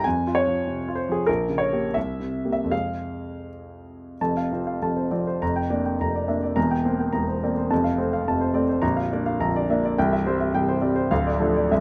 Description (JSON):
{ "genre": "classical, romantic character piece for solo piano", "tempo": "75-110 BPM", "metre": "2/4", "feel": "rubato", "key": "F minor, F major from 4.2 s", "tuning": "A4 = 439 Hz", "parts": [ { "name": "warm grand piano", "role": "solo", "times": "0.0-11.8 s", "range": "Bb0 to Bb5", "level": "-24 LUFS", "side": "equal", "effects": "none" } ], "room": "light reverb", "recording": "close, detailed microphones", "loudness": "-24 LUFS", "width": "mono", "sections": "0.0-4.2 A section; 4.2-11.8 B section", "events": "none", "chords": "0.1 F5; 1.3 Gdim/Bb; 2.0 C7; 2.7 Fm; 4.2 F; 5.4 Gm7/F; 6.6 C7/E; 7.7 F; 8.8 Bb; 10.0 C; 11.1 Dm" }